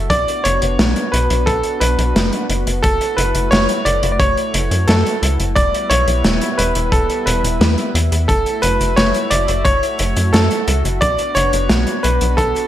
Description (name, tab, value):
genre	synthwave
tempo	88 BPM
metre	4/4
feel	straight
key	F# phrygian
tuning	A4 = 439 Hz
part	warm analog pad	sustained chords	0.0-12.7 s	G3 to E5	-24 LUFS	left 1 dB	chorus, vintage 12-bit sampler grit, sidechain pumping
part	tight sequencer bass	bass	0.0-12.5 s	E1 to F#2	-18 LUFS	equal	tube saturation
part	warm electric grand piano	melody	0.1-12.7 s	A4 to D5	-18 LUFS	equal	digital delay
part	crunchy breakbeat drum kit	drums	0.1-12.7 s	hi-hat, shaker, snare drum	-19 LUFS	equal	gated reverb
part	kick drum	drums	0.1-12.5 s	none	-19 LUFS	equal	none
room	moderate plate reverb, RT60 1.5 s, small room reverb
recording	bright 1980s-style digital production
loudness	-13 LUFS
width	side -12 dB against mid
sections	0.0-12.7 A section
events	none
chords	0.1 Bmadd9; 2.8 F#m7; 5.6 Em; 8.3 F#m7; 11.0 Bmadd9